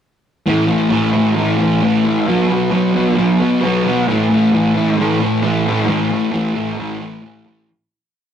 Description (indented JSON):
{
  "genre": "rock",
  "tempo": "133 BPM",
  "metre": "4/4",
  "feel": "straight",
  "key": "unclear",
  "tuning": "A4 = 439 Hz",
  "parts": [
    { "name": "fuzz guitar", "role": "solo", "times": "0.5-7.7 s", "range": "A2 to B3", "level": "-13 LUFS", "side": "equal", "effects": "distortion" }
  ],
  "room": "wet small room reverb, RT60 0.6 s",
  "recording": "rough rehearsal-room recording",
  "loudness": "-13 LUFS",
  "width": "side -8 dB against mid",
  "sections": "0.5-7.7 A section",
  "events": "fade-out 5.9-7.7",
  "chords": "0.5 A5; 2.3 B5; 4.1 A5"
}